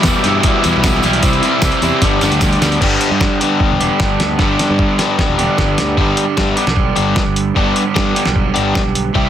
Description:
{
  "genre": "indie rock",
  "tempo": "152 BPM",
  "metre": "4/4",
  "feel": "straight",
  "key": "G major",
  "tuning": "A4 = 441 Hz",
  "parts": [
    { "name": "overdriven combo organ", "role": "sustained chords", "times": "0.0-2.8 s", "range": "G4 to D6", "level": "-24 LUFS", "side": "left 3 dB", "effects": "none" },
    { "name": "crunchy overdriven guitar", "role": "riff", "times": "0.0-9.3 s", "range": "G2 to G4", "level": "-17 LUFS", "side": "left 7 dB", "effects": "none" },
    { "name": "fuzz guitar", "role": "riff", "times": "0.0-9.3 s", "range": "E2 to G4", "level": "-17 LUFS", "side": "right 7 dB", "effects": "distortion, wide subtle chorus, analog delay" },
    { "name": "picked electric bass", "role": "bass", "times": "0.0-9.3 s", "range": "E1 to G2", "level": "-20 LUFS", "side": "equal", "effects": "none" },
    { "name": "lo-fi sampler-style drum kit", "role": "drums", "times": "0.0-9.2 s", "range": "crash cymbal, hi-hat, kick drum, snare drum", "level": "-17 LUFS", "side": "equal", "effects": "none" },
    { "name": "tambourine", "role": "percussion", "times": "0.1-2.7 s", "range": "none", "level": "-32 LUFS", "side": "right 6 dB", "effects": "none" }
  ],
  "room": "light reverb",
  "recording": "dense, heavily limited modern master",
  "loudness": "-12 LUFS",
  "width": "side -10 dB against mid",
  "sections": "0.0-2.8 A section; 2.8-6.0 B section; 6.0-9.3 C section",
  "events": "drum fill 2.0-2.8, 4.4-6.0",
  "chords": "0.0 Em7; 1.2 Cadd9; 2.0 G"
}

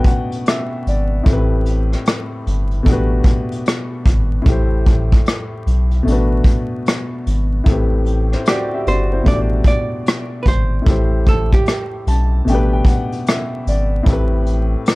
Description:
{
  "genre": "lo-fi hip hop",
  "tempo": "75 BPM",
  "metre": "4/4",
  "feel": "swing 63% on 16ths",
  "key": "A dorian",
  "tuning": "A4 = 439 Hz",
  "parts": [
    { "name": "archtop guitar, miked and amplified", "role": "melody", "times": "0.0, 8.5-13.1 s", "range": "G4 to D5", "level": "-24 LUFS", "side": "right 3 dB", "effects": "none" },
    { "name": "warm upright piano", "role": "accompaniment", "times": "0.0-14.9 s", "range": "A2 to A5", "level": "-21 LUFS", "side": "left 2 dB", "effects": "none" },
    { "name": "vintage brush drum kit", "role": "drums", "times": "0.0-14.9 s", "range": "hi-hat, kick drum, rim click", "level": "-16 LUFS", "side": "equal", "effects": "none" },
    { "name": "soft dub sub bass", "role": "bass", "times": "0.9-14.8 s", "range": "G1 to B1", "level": "-17 LUFS", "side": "equal", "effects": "none" }
  ],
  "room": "light reverb",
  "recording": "vinyl crackle",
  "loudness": "-14 LUFS",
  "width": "side -22 dB against mid",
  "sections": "0.0-14.9 A section",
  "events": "none",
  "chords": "0.0 Gmaj13; 1.3 Am7; 2.9 Gmaj9; 4.5 Am9; 6.1 Bm7; 7.7 Am7; 9.3 Gmaj13; 10.9 Am9; 12.5 Gadd9/A; 14.1 Am7"
}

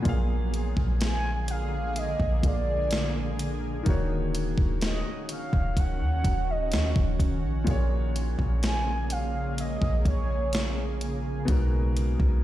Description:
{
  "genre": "contemporary R&B",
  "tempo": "63 BPM",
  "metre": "4/4",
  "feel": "straight",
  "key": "unclear",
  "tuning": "A4 = 441 Hz",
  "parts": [
    { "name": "warm grand piano", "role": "accompaniment", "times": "0.0-12.4 s", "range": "A#2 to E#5", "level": "-34 LUFS", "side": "left 2 dB", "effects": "none" },
    { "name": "clean 808-style bass", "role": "bass", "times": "0.0-12.4 s", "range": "D#1 to D#2", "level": "-28 LUFS", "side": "equal", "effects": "none" },
    { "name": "granular cloud pad", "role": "sustained chords", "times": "0.1-12.4 s", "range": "C#3 to G#4", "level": "-34 LUFS", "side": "right 1 dB", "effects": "built-in reverb" },
    { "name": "gated 80s digital drum machine", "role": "drums", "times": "0.1-12.4 s", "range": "hi-hat, kick drum, snare drum", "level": "-28 LUFS", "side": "equal", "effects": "gated reverb, gated reverb snare" },
    { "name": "mellow horn-like synth lead", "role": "melody", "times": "1.0-11.0 s", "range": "C#5 to G#5", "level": "-33 LUFS", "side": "right 2 dB", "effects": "chorus, ping-pong delay" }
  ],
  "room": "little or no reverb",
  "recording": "played on a big sound system in a bare room, stone room reverb",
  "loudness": "-24 LUFS",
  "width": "side -14 dB against mid",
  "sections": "0.0-12.4 A section",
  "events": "none",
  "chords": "0.1 A#7; 3.9 D#m7; 7.7 A#m7; 11.5 G#m7/B"
}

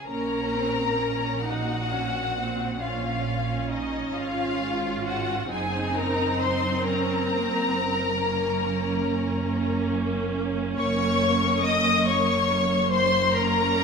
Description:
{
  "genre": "classical, slow romantic movement for string orchestra",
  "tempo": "42-47 BPM (dotted quarters)",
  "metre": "12/8",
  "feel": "rubato",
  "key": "Bb minor",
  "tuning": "A4 = 440 Hz",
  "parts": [
    { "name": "rich studio violin section", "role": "melody", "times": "0.0-13.8 s", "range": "Eb5 to Eb6", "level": "-27 LUFS", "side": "left 4 dB", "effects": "none" },
    { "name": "rich chamber violin section", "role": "second line", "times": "0.0-13.8 s", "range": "Eb4 to Eb5", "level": "-29 LUFS", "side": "left 3 dB", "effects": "none" },
    { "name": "rich chamber viola section", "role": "accompaniment", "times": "0.1-13.8 s", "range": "Bb3 to F4", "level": "-28 LUFS", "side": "right 2 dB", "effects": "none" },
    { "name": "rich chamber double bass section", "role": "bass", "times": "0.1-13.8 s", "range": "Gb1 to Bb1", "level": "-33 LUFS", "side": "right 5 dB", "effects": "none" },
    { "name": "rich symphonic cello section", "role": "bass", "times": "0.1-13.8 s", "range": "Gb2 to Bb2", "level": "-32 LUFS", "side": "right 4 dB", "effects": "none" }
  ],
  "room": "moderate concert hall reverb, RT60 2.2 s",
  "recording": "minimal, uncompressed stereo recording",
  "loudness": "-22 LUFS",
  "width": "side -5 dB against mid",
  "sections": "0.1-13.8 A section",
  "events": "none",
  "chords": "0.1 Bbm; 5.5 Gb; 10.8 Ebm7/Gb"
}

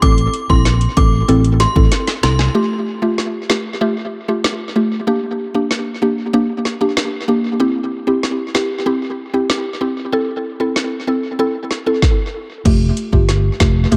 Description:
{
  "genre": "dancehall",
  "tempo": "95 BPM",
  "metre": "4/4",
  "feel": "straight",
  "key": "unclear",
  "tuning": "A4 = 440 Hz",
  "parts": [
    { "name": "synth chime", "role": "melody", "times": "0.0-2.3 s", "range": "C6 to D6", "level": "-24 LUFS", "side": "equal", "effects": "ensemble chorus, tape echo" },
    { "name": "mallet-like synth pluck", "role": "accompaniment", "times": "0.0-14.0 s", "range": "A3 to A4", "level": "-20 LUFS", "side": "equal", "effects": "chorus, phaser, tape echo" },
    { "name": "fingered electric bass", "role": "bass", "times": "0.0-2.5, 12.7-14.0 s", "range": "F1 to C2", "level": "-18 LUFS", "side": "equal", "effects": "none" },
    { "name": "afro-pop drum kit", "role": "drums", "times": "0.0-14.0 s", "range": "crash cymbal, hi-hat, kick drum, snare drum", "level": "-20 LUFS", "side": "equal", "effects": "vintage 12-bit sampler grit, tape echo" },
    { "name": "bongos", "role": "percussion", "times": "0.0-2.4 s", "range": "none", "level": "-34 LUFS", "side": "equal", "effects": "none" }
  ],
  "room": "light reverb",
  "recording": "echo-heavy mix",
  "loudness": "-17 LUFS",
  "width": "mono",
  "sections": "0.0-2.5 A section; 2.5-12.7 B section; 12.7-14.0 C section",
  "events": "drum fill 1.9-2.5",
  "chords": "0.0 Am; 2.5 Fadd9; 5.1 Gm; 7.6 C; 10.1 Am; 12.7 Fadd9"
}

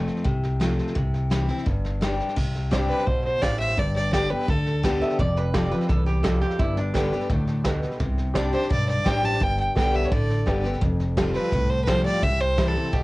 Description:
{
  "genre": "honky-tonk and classic country",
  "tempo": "170 BPM",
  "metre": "4/4",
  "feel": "straight",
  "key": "G mixolydian",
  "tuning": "A4 = 440 Hz",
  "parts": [
    { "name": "picked steel-string acoustic guitar", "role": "accompaniment", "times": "0.0-13.0 s", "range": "E2 to G4", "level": "-27 LUFS", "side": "left 2 dB", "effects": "cassette tape" },
    { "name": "upright bass", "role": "bass", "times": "0.0-13.0 s", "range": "F1 to D2", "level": "-26 LUFS", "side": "equal", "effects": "none" },
    { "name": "soft brush drum kit", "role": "drums", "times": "0.1-13.0 s", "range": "crash cymbal, hi-hat, kick drum, snare drum", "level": "-27 LUFS", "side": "equal", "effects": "cassette tape" },
    { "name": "honky-tonk upright piano", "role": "accompaniment", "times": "2.7-12.9 s", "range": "E4 to F5", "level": "-32 LUFS", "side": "right 2 dB", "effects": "cassette tape" },
    { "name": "clear fiddle", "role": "melody", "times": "2.9-5.0, 8.5-13.0 s", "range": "G4 to A5", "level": "-26 LUFS", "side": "right 1 dB", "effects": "cassette tape" },
    { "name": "lap resonator guitar", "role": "second line", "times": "5.0-7.8 s", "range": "D4 to E5", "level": "-30 LUFS", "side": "right 2 dB", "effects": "cassette tape" }
  ],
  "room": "light reverb",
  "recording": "home recording on cassette",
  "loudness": "-21 LUFS",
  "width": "side -20 dB against mid",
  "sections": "0.0-2.4 A section; 2.4-13.0 B section",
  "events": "none",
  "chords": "0.0 F; 1.0 C; 1.7 Gsus4; 2.4 Csus2; 3.8 Gadd9; 5.2 Fadd9; 6.6 Gadd9; 8.0 Csus2; 9.4 Gadd9; 10.8 Fadd9; 12.2 C"
}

